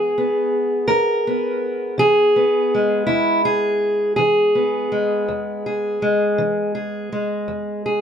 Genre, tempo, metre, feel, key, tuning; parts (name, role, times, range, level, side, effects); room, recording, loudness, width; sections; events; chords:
acoustic country blues, solo or duo; 55 BPM (dotted quarters); 12/8; straight; E major; A4 = 441 Hz
fingerpicked steel-string acoustic guitar; solo; 0.0-8.0 s; E2 to A#4; -17 LUFS; equal
light reverb; -17 LUFS; side -8 dB against mid
0.0-8.0 A section
0.0 E